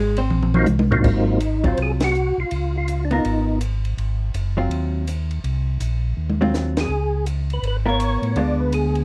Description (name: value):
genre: soul jazz organ trio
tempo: 164 BPM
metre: 4/4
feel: swing 63% on 8ths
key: Ab mixolydian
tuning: A4 = 440 Hz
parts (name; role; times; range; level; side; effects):
- vintage hollow-body jazz guitar; accompaniment; 0.0-9.0 s; D3 to C5; -25 LUFS; equal; none
- mellow tonewheel organ; bass; 0.0-9.0 s; Gb1 to A2; -24 LUFS; equal; chorus vibrato, slow rotary speaker
- compact cocktail drum kit; drums; 0.2-9.0 s; crash cymbal, hi-hat, kick drum, ride cymbal, snare drum, toms; -27 LUFS; equal; none
- percussive tonewheel organ; melody; 0.5-3.6, 6.8-9.0 s; Ab2 to D5; -25 LUFS; equal; slow rotary speaker, chorus vibrato
room: light reverb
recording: dark, warm production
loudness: -21 LUFS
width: mono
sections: 0.0-1.0 A section; 1.0-9.0 B section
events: hollow-body jazz guitar solo 0.0-1.0; drum fill 0.3-1.0, 6.2-6.5; band accent 2.0, 6.7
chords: 0.0 Ab13; 2.5 Db13; 4.0 Ab13; 6.9 Db6; 8.4 Ddim7